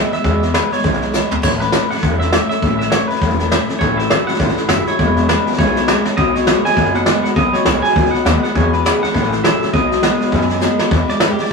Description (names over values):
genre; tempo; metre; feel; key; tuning
rockabilly; 202 BPM; 4/4; swing 59% on 8ths; E major; A4 = 440 Hz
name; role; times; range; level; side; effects
twangy electric guitar; melody; 0.0-11.5 s; G4 to G#5; -21 LUFS; right 2 dB; none
picked steel-string acoustic guitar; accompaniment; 0.0-11.5 s; E2 to A4; -21 LUFS; left 3 dB; none
upright bass; bass; 0.1-11.5 s; E1 to G#2; -20 LUFS; left 1 dB; none
soft brush drum kit; drums; 0.1-11.5 s; hi-hat, kick drum, snare drum, splash cymbal, toms; -17 LUFS; equal; none
electric guitar through a small old amp; riff; 3.8-10.9 s; E2 to G#3; -20 LUFS; left 1 dB; none
room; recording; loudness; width
moderate small room reverb, RT60 0.5 s; rough rehearsal-room recording, small room ambience; -13 LUFS; side -4 dB against mid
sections
0.0-10.9 A section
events
drum fill 1.1, 6.0, 10.6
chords
0.0 E; 1.4 A; 5.0 E; 6.2 B; 8.5 E; 9.1 A; 9.7 B; 10.9 E